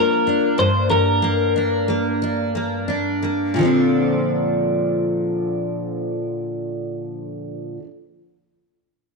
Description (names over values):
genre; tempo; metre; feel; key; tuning
pop; 84-96 BPM; 4/4; straight; Bb major; A4 = 438 Hz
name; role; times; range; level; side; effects
twelve-string electric guitar; melody; 0.0-2.8 s; Bb4 to C5; -19 LUFS; left 3 dB; none
picked steel-string acoustic guitar; accompaniment; 0.0-7.9 s; G2 to A4; -20 LUFS; equal; double-tracked left and right
room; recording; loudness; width
moderate plate reverb, RT60 1.5 s, small room ambience; 1960s-style stereo; -18 LUFS; side -3 dB against mid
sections
0.0-3.6 A section; 3.6-6.5 B section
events
slowing down 0.0-3.6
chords
0.0 Bb/F; 0.6 Gm; 3.6 Bbmaj9